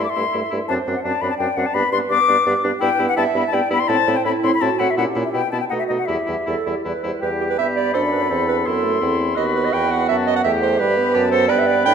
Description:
quick classical-period movement for wind quintet; 168 BPM; 3/4; rubato; E minor; A4 = 440 Hz
concert flute; melody; 0.0-11.9 s; D#5 to D6; -22 LUFS; left 7 dB
warm oboe; second line; 0.0-11.9 s; D4 to B4; -26 LUFS; left 3 dB
clear French horn; accompaniment; 0.0-11.9 s; G3 to D4; -26 LUFS; right 1 dB
mellow clarinet; accompaniment; 0.0-11.9 s; E4 to G5; -22 LUFS; right 7 dB
mellow bassoon; bass; 0.0-11.9 s; D#2 to B2; -24 LUFS; right 2 dB
wet recital hall reverb, RT60 1.8 s; -17 LUFS; side -7 dB against mid
0.0-7.2 A section; 7.2-11.9 B section
0.0 Am7/G; 0.7 D7/F#; 1.7 G; 2.8 Em/G; 3.9 F#m7b5/A; 5.0 A#dim7; 5.3 Em/B; 5.7 B7; 6.1 Em; 8.3 F#m7b5/E; 9.4 B/D#; 10.4 Em

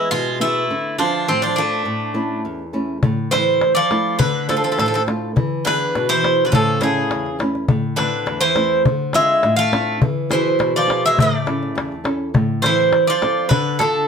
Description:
greek folk, Greek bouzouki band; 103 BPM; 2/4; straight; A4 = 439 Hz
Greek bouzouki; melody; 0.0-14.1 s; C4 to F5; -18 LUFS; right 1 dB
Greek bouzouki; second line; 0.0-14.1 s; C3 to A3; -23 LUFS; right 2 dB
flamenco guitar; accompaniment; 0.0-14.1 s; E2 to A4; -23 LUFS; equal
darbuka; percussion; 3.0-13.9 s; -21 LUFS; left 3 dB
moderate studio reverb, RT60 0.6 s; -16 LUFS; side -6 dB against mid
0.0-3.0 A section; 3.0-12.3 B section; 12.3-14.1 B section
0.0 E; 0.7 Dm; 1.9 A; 3.0 Am; 4.2 Dm; 5.4 E; 6.5 A; 7.7 Am; 8.9 Dm7; 10.0 E; 11.2 A; 12.3 Am; 13.5 Dm

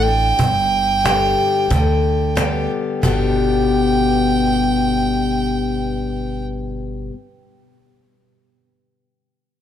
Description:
honky-tonk and classic country; 91 BPM; 4/4; straight; G major; A4 = 442 Hz
clear fiddle; melody; 0.0-6.4 s; G5; -20 LUFS; right 3 dB
picked steel-string acoustic guitar; accompaniment; 0.0-7.1 s; G2 to G4; -19 LUFS; left 5 dB
upright bass; bass; 0.0-7.1 s; G1 to D2; -23 LUFS; right 1 dB
cajon; drums; 0.1-3.2 s; -23 LUFS; right 1 dB
light reverb; -15 LUFS; side -10 dB against mid
0.0-3.0 A section; 3.0-5.7 B section
0.4 G

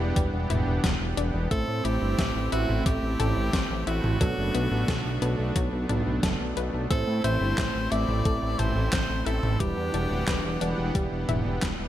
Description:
synthwave; 89 BPM; 4/4; straight; A dorian; A4 = 440 Hz
brassy analog pad; sustained chords; 0.0-11.9 s; E3 to F#5; -33 LUFS; right 1 dB; chorus, sidechain pumping
analog pluck; arpeggios; 0.0-11.9 s; F#3 to E5; -36 LUFS; left 5 dB; chorus, ping-pong delay
tine electric piano; stabs; 0.0-11.9 s; F#3 to E5; -33 LUFS; right 3 dB; ping-pong delay
fat analog bass; bass; 0.0-11.9 s; D1 to A2; -28 LUFS; equal; sidechain pumping
downlifter; sound effects; 0.0-1.5 s; barely audible
electronic kick drum; drums; 0.2-11.8 s; -28 LUFS; equal; overdrive
gated 80s digital drum machine; drums; 0.2-11.8 s; handclaps, hi-hat, snare drum, toms; -30 LUFS; right 1 dB; gated reverb, gated reverb snare, overdrive
edgy tenor saxophone; melody; 1.5-10.9 s; F#4 to D5; -33 LUFS; left 1 dB; tape echo
light reverb; -24 LUFS; side -12 dB against mid
0.0-11.9 A section
fade-out 10.5-11.9
0.0 Em7; 1.5 Am; 4.2 Bm7; 6.9 Am; 9.6 Em7

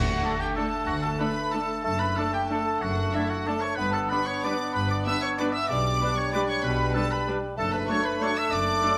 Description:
classical; 189 BPM; 3/4; uneven beats, rubato; D major; A4 = 444 Hz
rich studio violin section; melody; 0.0-9.0 s; E5 to E6; -36 LUFS; equal
clear oboe; second line; 0.0-9.0 s; E4 to E5; -34 LUFS; equal
large flute ensemble; second line; 0.0-9.0 s; E5 to E6; -36 LUFS; equal
mellow clarinet; second line; 0.0-9.0 s; D4; -38 LUFS; equal
rich studio violin section; second line; 0.0-9.0 s; E4 to E5; -39 LUFS; equal
mellow bassoon; accompaniment; 0.0-9.0 s; G3 to B3; -35 LUFS; equal
rich studio cello section; bass; 0.0-8.8 s; D2 to B2; -36 LUFS; equal
rich studio double bass section; bass; 0.0-8.8 s; F#1 to D2; -37 LUFS; equal
rich chamber viola section; accompaniment; 0.2-8.9 s; G3 to D4; -37 LUFS; equal
dark French horn section; sustained chords; 0.2-8.9 s; F#3 to D4; -41 LUFS; equal
bright trumpet section; stabs; 0.2-8.9 s; A4 to B4; -38 LUFS; equal
wet recital hall reverb, RT60 1.3 s; -26 LUFS; mono
0.0-9.0 A section
0.0 D; 1.8 D/F#; 3.8 G; 5.7 G/B; 7.6 D/F#

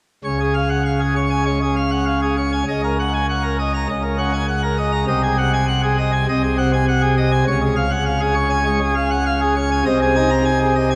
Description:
classical, organ toccata; 100 BPM; 4/4; straight; Db major; A4 = 440 Hz
pipe organ, plenum; solo; 0.2-11.0 s; C2 to Bb5; -18 LUFS; equal
wet church reverb, RT60 2.8 s; worn, warbling old tape, cassette tape, warbly pitch drift; -19 LUFS; mono
0.2-11.0 A section
0.2 Db; 2.7 Ebm7/Db; 5.1 Ab7/C; 7.5 Db; 9.9 Ab/C

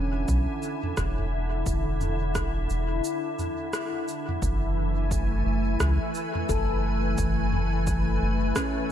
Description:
ambient dub; 87 BPM; 4/4; swing 60% on 16ths; F# minor; A4 = 440 Hz
soft additive organ-like pad; sustained chords; 0.0-8.9 s; D3 to G#5; -29 LUFS; left 1 dB; ensemble chorus, built-in reverb
handpan; arpeggios; 0.0-2.4, 6.5-8.9 s; C#4 to A4; -35 LUFS; left 1 dB; dub echo
soft dub sub bass; bass; 0.0-8.5 s; E1 to C#2; -26 LUFS; equal
electronic kick drum; drums; 0.3-8.7 s; -31 LUFS; equal
organic electronic drum kit; drums; 0.3-8.7 s; rim click, shaker, toms; -33 LUFS; right 1 dB; dub echo
light reverb; -24 LUFS; side -10 dB against mid
0.0-4.4 A section; 4.4-8.9 B section
break 3.0-4.4; band accent 3.7-4.1
0.0 E5; 4.4 F#m11

